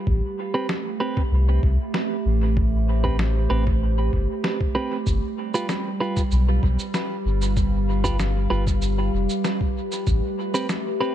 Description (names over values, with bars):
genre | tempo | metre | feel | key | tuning
ambient dub | 96 BPM | 4/4 | straight | A minor | A4 = 440 Hz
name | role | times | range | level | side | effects
warbly tape-like pad | sustained chords | 0.0-11.1 s | G3 to F5 | -27 LUFS | right 2 dB | chorus, built-in reverb
soft dub sub bass | bass | 0.1-10.2 s | F1 to C2 | -21 LUFS | equal | none
electronic kick drum | drums | 0.1-10.2 s | none | -25 LUFS | equal | overdrive
clean electric guitar | stabs | 0.5-11.1 s | C4 to B4 | -29 LUFS | right 2 dB | dub echo
electronic snare drum and cabasa | drums | 0.7-10.8 s | none | -30 LUFS | left 1 dB | overdrive, dub echo
room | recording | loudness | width
digital ambience | dark, warm production | -20 LUFS | side -11 dB against mid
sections
0.0-11.1 A section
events
none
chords
0.1 Am9; 5.1 G7; 10.1 Am9